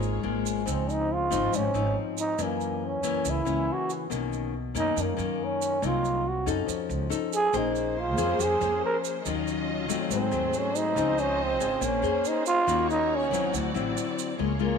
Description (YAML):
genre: bossa nova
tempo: 140 BPM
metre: 4/4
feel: straight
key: Db major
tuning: A4 = 442 Hz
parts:
  - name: nylon-string guitar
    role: accompaniment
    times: 0.0-14.8 s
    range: Gb2 to C5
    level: -29 LUFS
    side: left 10 dB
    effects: none
  - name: warm symphonic string section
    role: sustained chords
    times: 0.0-0.6, 7.5-14.8 s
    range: Gb3 to Eb5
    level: -34 LUFS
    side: right 1 dB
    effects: none
  - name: upright bass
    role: bass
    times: 0.0-14.8 s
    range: Ab1 to Gb2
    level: -33 LUFS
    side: right 3 dB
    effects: none
  - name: tube shaker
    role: percussion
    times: 0.0-14.4 s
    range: none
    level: -38 LUFS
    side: right 18 dB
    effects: none
  - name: growling trombone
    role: melody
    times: 0.7-14.8 s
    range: Bb3 to Bb4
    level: -27 LUFS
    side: right 3 dB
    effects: none
room: moderate echo chamber reverb, RT60 1.7 s, small room ambience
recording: 1960s-style stereo with parts hard left and right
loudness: -25 LUFS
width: side -6 dB against mid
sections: 0.7-14.4 A section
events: trombone solo 0.0-14.4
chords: 0.0 Db6; 0.7 Dbmaj9; 2.4 Gb7; 4.1 Cbmaj9; 5.8 Cm7b5; 6.7 Faug7; 7.5 Bbm9; 9.3 Ebm9; 10.1 Ab7b9; 11.0 Dbmaj9; 11.8 Bbm9; 12.7 Ebm7; 13.5 D9